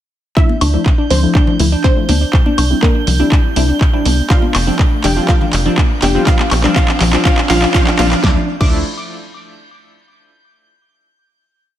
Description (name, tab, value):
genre	progressive house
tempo	122 BPM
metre	4/4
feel	straight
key	D minor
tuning	A4 = 440 Hz
part	wide unison pluck	melody	0.4-8.8 s	Bb3 to D6	-21 LUFS	equal	cassette tape, digital delay
part	glassy wavetable pluck	arpeggios	0.4-8.8 s	D4	-20 LUFS	equal	chorus, cassette tape, sidechain pumping, digital delay
part	chorused polysynth	stabs	0.4-8.8 s	F3 to F4	-20 LUFS	equal	sidechain pumping, digital delay
part	electronic kick drum	drums	0.4-8.7 s	none	-13 LUFS	equal	studio reverb
part	pop drum kit	drums	0.4-8.7 s	crash cymbal, handclaps, hi-hat, snare drum, woodblock	-19 LUFS	equal	high-pass filter on snare, studio reverb, high-pass filter on hats, high-pass filter on perc, high-pass filter on cymbals
part	riser	sound effects	2.3-8.2 s	none	-26 LUFS	left 1 dB	none
part	drifting glass-harmonics texture	texture	0.7-8.2 s	G6	-29 LUFS	right 7 dB	chorus, built-in reverb, sidechain pumping
part	congas	percussion	0.5-8.1 s	none	-24 LUFS	left 4 dB	sidechain pumping on perc
part	tight sequencer bass	bass	0.6-8.8 s	F1 to D2	-15 LUFS	equal	sidechain pumping
room	light reverb, digital ambience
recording	none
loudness	-11 LUFS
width	side -12 dB against mid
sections	0.4-8.2 build; 8.2-10.2 final chord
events	build-up 0.4-8.2; drum fill 0.4-8.2; filter sweep on synth arpeggio sound 0.4-8.2; filter sweep on analog polysynth 0.4-8.2; riser 2.3-8.2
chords	0.4 Dmadd9; 2.3 Cadd9; 4.3 Fsus2; 6.3 Bb; 8.2 Dmadd9